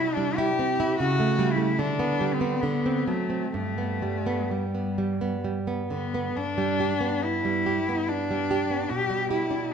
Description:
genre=romantic duo for cello and classical guitar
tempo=62-76 BPM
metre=3/4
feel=rubato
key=G major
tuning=A4 = 436 Hz
part: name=rich cello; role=melody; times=0.0-9.7 s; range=G3 to G4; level=-27 LUFS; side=left 4 dB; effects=none
part: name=nylon-string guitar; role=accompaniment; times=0.0-9.7 s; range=G2 to G4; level=-26 LUFS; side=right 4 dB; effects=none
room=moderate recital hall reverb, RT60 1.7 s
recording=recorded in a church or concert hall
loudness=-24 LUFS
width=side -7 dB against mid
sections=0.0-6.4 A section; 6.4-9.7 B section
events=none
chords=0.0 C; 1.0 A7/C#; 1.8 G/D; 2.6 D7; 3.5 G; 8.9 G/B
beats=0.15 | 0.98 1.78 2.62 | 3.55 4.51 5.45 | 6.37 7.23 8.09 | 8.90 9.71

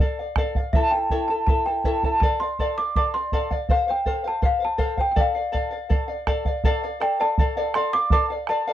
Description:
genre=andean folk, Andean ensemble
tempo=81 BPM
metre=2/4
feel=straight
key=D minor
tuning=A4 = 445 Hz
part: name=worn celesta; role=melody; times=0.0-8.7 s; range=D5 to D6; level=-24 LUFS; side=equal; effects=none
part: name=charango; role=accompaniment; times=0.0-8.7 s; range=E4 to A5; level=-26 LUFS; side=left 1 dB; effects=none
part: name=bombo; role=percussion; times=0.4-8.7 s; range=none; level=-23 LUFS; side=right 1 dB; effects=none
room=light reverb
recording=dry, close 1970s-style studio recording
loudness=-20 LUFS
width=side -12 dB against mid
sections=0.0-6.6 A section; 6.6-8.7 B section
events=none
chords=0.0 Dm; 0.7 A; 2.2 Dm; 3.7 F; 5.2 Dm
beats=| 0.73 1.47 | 2.21 2.95 | 3.69 4.43 | 5.17 5.91 | 6.65 7.38 | 8.12

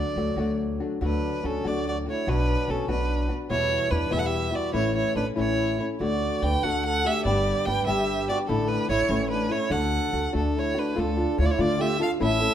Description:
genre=mexican folk, mariachi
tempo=97 BPM (dotted quarters)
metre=6/8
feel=rubato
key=D major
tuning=A4 = 440 Hz
part: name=rich violin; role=melody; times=0.0-12.5 s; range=A4 to G5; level=-27 LUFS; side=right 2 dB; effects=none
part: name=nylon-string guitar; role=accompaniment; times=0.0-12.5 s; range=E2 to G4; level=-27 LUFS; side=left 3 dB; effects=none
part: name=upright bass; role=bass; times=0.2-12.5 s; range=G1 to D3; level=-29 LUFS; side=right 1 dB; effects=none
part: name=dark trumpet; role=second line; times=1.0-12.5 s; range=C#4 to B4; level=-32 LUFS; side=right 4 dB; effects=none
room=moderate recital hall reverb, RT60 1.5 s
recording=minimal, uncompressed stereo recording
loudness=-23 LUFS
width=side -10 dB against mid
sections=0.0-11.0 A section; 11.0-12.5 B section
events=none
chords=0.0 D; 2.3 Bm; 3.5 Em; 4.7 A; 6.0 D; 7.3 G; 8.5 Asus4; 9.1 A; 9.7 D; 11.0 Dm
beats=0.38 | 1.02 1.65 | 2.28 2.89 | 3.50 4.11 | 4.74 5.37 | 6.00 6.63 | 7.26 7.88 | 8.49 9.10 | 9.71 10.34 | 10.96 11.59 | 12.20

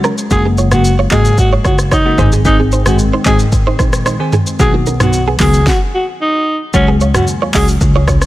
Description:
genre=afrobeats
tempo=112 BPM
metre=4/4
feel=straight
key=F# major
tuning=A4 = 441 Hz
part: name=bell-like FM electric piano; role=accompaniment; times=0.0-7.7 s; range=C#3 to G#4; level=-17 LUFS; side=left 1 dB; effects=chorus, phaser
part: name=hollow soft pad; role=sustained chords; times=0.0-8.3 s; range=D#3 to C#4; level=-24 LUFS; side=left 2 dB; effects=chorus
part: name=direct-recorded clean electric guitar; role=riff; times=0.0-8.2 s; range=A#3 to D#5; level=-20 LUFS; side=right 5 dB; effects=ensemble chorus, digital delay
part: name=afro-pop drum kit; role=drums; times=0.0-8.3 s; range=handclaps, hi-hat, kick drum, rim click, shaker, snare drum, toms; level=-14 LUFS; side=equal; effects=overdrive
part: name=growling alto saxophone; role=melody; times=0.3-7.7 s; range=C#4 to G#4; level=-17 LUFS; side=equal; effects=digital delay
part: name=upright bass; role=bass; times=0.3-8.2 s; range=F#1 to D#2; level=-14 LUFS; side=equal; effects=none
room=digital ambience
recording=none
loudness=-10 LUFS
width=side -16 dB against mid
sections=0.0-6.7 A section; 6.7-8.3 B section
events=stop 5.7-6.7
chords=0.3 F#add9; 2.2 G#; 4.6 B; 6.7 C#sus4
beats=| 0.31 0.84 1.38 1.92 | 2.45 2.99 3.52 4.06 | 4.59 5.13 5.67 6.20 | 6.74 7.27 7.81

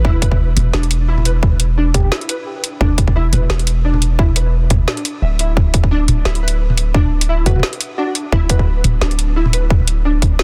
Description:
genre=half-time drum and bass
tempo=174 BPM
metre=4/4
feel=swing 56% on 16ths, half-time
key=unclear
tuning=A4 = 442 Hz
part: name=warbly dusty pluck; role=arpeggios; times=0.0-10.4 s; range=D4 to E5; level=-26 LUFS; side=equal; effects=ensemble chorus, dub echo
part: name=long sustained 808-style bass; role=bass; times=0.0-10.4 s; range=D1 to E1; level=-18 LUFS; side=equal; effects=none
part: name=electronic kick drum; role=drums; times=0.0-10.3 s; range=none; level=-17 LUFS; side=equal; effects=none
part: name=drum and bass drum kit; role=drums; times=0.2-10.4 s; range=hi-hat, snare drum, toms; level=-22 LUFS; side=equal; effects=soft clipping on snare
part: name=soft struck synth lead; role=melody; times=1.9-2.1, 7.5-8.1 s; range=F#4 to G4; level=-30 LUFS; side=equal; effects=chorus, phaser, delay
room=digital ambience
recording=dense, heavily limited modern master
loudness=-16 LUFS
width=mono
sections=0.0-10.4 A section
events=none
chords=0.1 E5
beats=| 0.05 0.40 0.74 1.08 | 1.43 1.77 2.12 2.46 | 2.81 3.15 3.50 3.84 | 4.19 4.53 4.88 5.22 | 5.57 5.91 6.26 6.60 | 6.95 7.29 7.64 7.98 | 8.33 8.67 9.02 9.36 | 9.71 10.05 10.40

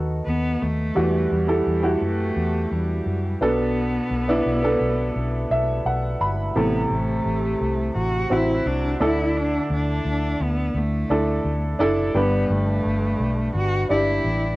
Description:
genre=piano-driven pop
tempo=86 BPM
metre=4/4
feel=straight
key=unclear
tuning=A4 = 440 Hz
part: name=warm upright piano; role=accompaniment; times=0.0-14.6 s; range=G2 to B5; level=-23 LUFS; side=right 1 dB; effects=cassette tape, plate reverb
part: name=vintage muted fingered electric bass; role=bass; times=0.0-14.5 s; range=F#1 to F#2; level=-25 LUFS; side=equal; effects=none
part: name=rich cello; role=melody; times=0.3-14.6 s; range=G3 to F#4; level=-27 LUFS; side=equal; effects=cassette tape
room=moderate small room reverb, RT60 0.5 s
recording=home recording on cassette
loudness=-20 LUFS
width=side -19 dB against mid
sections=0.0-6.6 A section; 6.6-14.6 B section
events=upright piano fill 5.2-6.6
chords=0.0 B/D#; 1.0 Emadd9; 3.4 Bm7; 6.6 Am; 9.0 Dsus2; 12.2 G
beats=0.26 | 0.96 1.66 2.36 3.06 | 3.76 4.46 5.16 5.86 | 6.56 7.26 7.96 8.65 | 9.36 10.05 10.75 11.45 | 12.15 12.85 13.55 14.25

